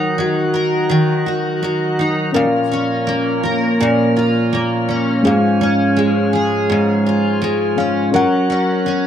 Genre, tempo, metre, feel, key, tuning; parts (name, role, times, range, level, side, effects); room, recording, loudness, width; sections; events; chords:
acoustic pop; 83 BPM; 4/4; swing 60% on 16ths; A4 = 440 Hz
picked steel-string acoustic guitar; accompaniment; 0.0-9.1 s; G#2 to A#4; -16 LUFS; equal; double-tracked left and right
reed electric piano; accompaniment; 0.0-9.1 s; G#3 to F#5; -20 LUFS; left 2 dB; slapback echo
tonewheel organ; sustained chords; 0.0-9.1 s; G#2 to F#5; -23 LUFS; right 1 dB; slow rotary speaker
little or no reverb; recorded outdoors, with no room sound; -14 LUFS; side -9 dB against mid
0.0-9.1 A section
0.0 D#m; 2.4 A#m; 5.2 C#/G#; 8.1 F#